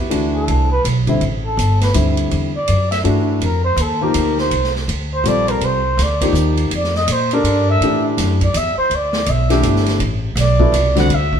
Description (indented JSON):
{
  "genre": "modal jazz",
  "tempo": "164 BPM",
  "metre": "3/4",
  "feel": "swing 63% on 8ths",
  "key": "unclear",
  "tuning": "A4 = 438 Hz",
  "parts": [
    { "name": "warm baby grand piano", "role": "accompaniment", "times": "0.0-11.1 s", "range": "D3 to Bb4", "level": "-19 LUFS", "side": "left 2 dB", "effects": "none" },
    { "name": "upright bass", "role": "bass", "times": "0.0-11.4 s", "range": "G1 to Bb2", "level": "-18 LUFS", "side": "equal", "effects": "none" },
    { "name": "swinging big-band drum kit", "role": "drums", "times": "0.1-11.4 s", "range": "hi-hat, kick drum, ride cymbal, snare drum", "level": "-24 LUFS", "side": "right 2 dB", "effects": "none" },
    { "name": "breathy trumpet", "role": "melody", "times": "0.3-11.4 s", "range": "A4 to F#5", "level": "-19 LUFS", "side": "right 1 dB", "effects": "none" }
  ],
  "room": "moderate stone room reverb, RT60 1.4 s",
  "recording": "band playing live in one room",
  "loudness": "-14 LUFS",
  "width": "side -8 dB against mid",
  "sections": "0.0-11.4 A section",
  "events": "trumpet solo 0.0-11.4",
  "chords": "0.0 A7sus4; 3.4 F13sus4; 7.8 A13sus4"
}